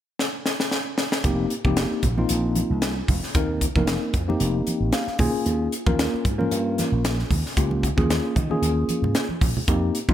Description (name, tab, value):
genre	electric jazz fusion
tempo	114 BPM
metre	4/4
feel	swing 54% on 16ths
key	F minor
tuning	A4 = 440 Hz
part	crisp fusion drum kit	drums	0.2-10.1 s	hi-hat, kick drum, snare drum	-24 LUFS	equal	none
part	mellow tine electric piano	accompaniment	1.2-10.1 s	Bb3 to Ab5	-25 LUFS	left 1 dB	medium stereo tremolo
part	slap bass with an envelope filter	bass	1.2-10.1 s	F1 to Eb3	-25 LUFS	equal	none
part	congas	percussion	1.7-10.1 s	none	-31 LUFS	right 2 dB	none
room	light reverb, small room ambience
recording	bright 1980s-style digital production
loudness	-20 LUFS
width	side -11 dB against mid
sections	0.0-1.2 A section; 1.2-10.1 B section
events	drum fill 0.2-1.2, 9.3-9.7; tine electric piano fill 4.7-5.5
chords	0.0 N.C.; 1.2 F9sus4; 5.2 Eb9sus4